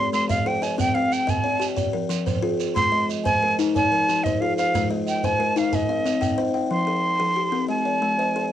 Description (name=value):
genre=southern african traditional, mbira-style interlocking cycle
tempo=122 BPM (dotted quarters)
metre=12/8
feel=straight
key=F equiheptatonic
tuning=A4 = 440 Hz
part: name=breathy bright jazz flute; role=melody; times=0.0-8.5 s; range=Eb5+29c to C6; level=-22 LUFS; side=right 1 dB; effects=cassette tape
part: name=buzzing kalimba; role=arpeggios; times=0.0-8.5 s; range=F3 to Ab5+43c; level=-25 LUFS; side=left 6 dB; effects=cassette tape
part: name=kalimba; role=arpeggios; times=0.0-8.5 s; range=F3 to F5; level=-30 LUFS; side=right 8 dB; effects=cassette tape
part: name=shekere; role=percussion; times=0.1-6.4 s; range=none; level=-29 LUFS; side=right 4 dB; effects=none
room=wet studio reverb, RT60 0.7 s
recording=home recording on cassette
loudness=-20 LUFS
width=side -11 dB against mid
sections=0.0-6.7 A section; 6.7-8.5 A section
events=none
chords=0.0 Ab; 0.8 Cm; 1.8 Fm; 2.8 Ab; 3.7 Fm; 4.7 Ab; 5.7 Cm; 6.7 Fm; 7.7 Ab